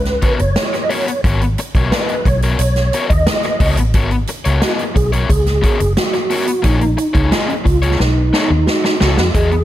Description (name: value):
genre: funk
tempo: 89 BPM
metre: 4/4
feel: straight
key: G# dorian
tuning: A4 = 440 Hz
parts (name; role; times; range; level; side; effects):
- mellow tonewheel organ; melody; 0.0-9.6 s; C#4 to D#5; -19 LUFS; right 1 dB; chorus vibrato, fast rotary speaker
- vintage muted fingered electric bass; bass; 0.0-9.6 s; F#1 to E#2; -16 LUFS; equal; none
- swinging big-band drum kit; drums; 0.1-9.6 s; hi-hat, kick drum, snare drum; -18 LUFS; equal; none
- crunchy overdriven guitar; accompaniment; 0.2-9.6 s; A#3 to D#5; -22 LUFS; left 5 dB; none
room: small room ambience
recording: none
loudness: -13 LUFS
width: side -13 dB against mid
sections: 0.0-9.3 A section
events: drum fill 8.0-9.3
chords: 0.0 G#m11 (rootless); 6.6 A#m7; 8.0 B9